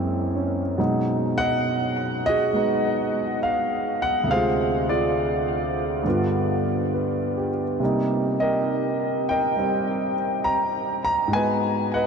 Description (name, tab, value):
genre	solo jazz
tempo	68 BPM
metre	4/4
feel	swing 68% on 8ths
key	unclear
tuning	A4 = 443 Hz
part	warm grand piano	solo	0.0-12.1 s	D2 to Bb5	-21 LUFS	equal	tape echo
room	wet huge ambient reverb, RT60 9.1 s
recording	dreamy mix soaked in reverb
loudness	-21 LUFS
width	side -6 dB against mid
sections	0.0-12.1 A section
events	none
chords	0.0 Gb9; 0.8 B6; 4.3 Dm7b5; 6.0 G7; 7.8 Cm7; 11.3 Abm7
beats	| 0.79 1.66 2.54 3.42 | 4.29 5.17 6.05 6.93 | 7.80 8.68 9.56 10.44 | 11.31